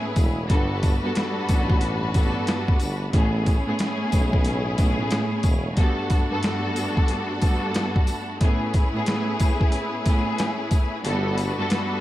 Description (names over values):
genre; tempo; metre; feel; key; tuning
hip hop, boom-bap hip-hop; 91 BPM; 4/4; swing 62% on 16ths; A major; A4 = 440 Hz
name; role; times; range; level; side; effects
warm studio string section; accompaniment; 0.0-12.0 s; G2 to A4; -26 LUFS; right 1 dB; cassette tape, high-pass filter, low-pass filter
bright tonewheel organ; sustained chords; 0.0-12.0 s; A3 to B5; -35 LUFS; right 3 dB; chorus vibrato, stopped rotary speaker, high-pass filter, low-pass filter
rich studio string section; stabs; 0.0-12.0 s; C#4 to B4; -30 LUFS; left 3 dB; high-pass filter, low-pass filter, ping-pong delay
warm tuba; bass; 0.2-5.7, 11.1-11.5 s; E1 to B1; -27 LUFS; equal; none
boom bap sampler-style drum kit; drums; 0.2-11.9 s; hi-hat, kick drum, snare drum; -21 LUFS; equal; overdrive
tambourine; percussion; 0.2-11.6 s; none; -42 LUFS; left 4 dB; none
room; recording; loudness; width
studio ambience; vinyl crackle; -20 LUFS; side -15 dB against mid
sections
0.0-12.0 A section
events
kick muted 11.1-12.0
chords
0.0 Amaj9; 0.5 Gmaj9; 3.1 Amaj9; 5.8 Gmaj9; 8.4 Amaj9; 11.1 Gmaj9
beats
| 0.50 1.16 1.82 2.48 | 3.14 3.80 4.46 5.12 | 5.78 6.43 7.09 7.75 | 8.41 9.07 9.73 10.39 | 11.05 11.71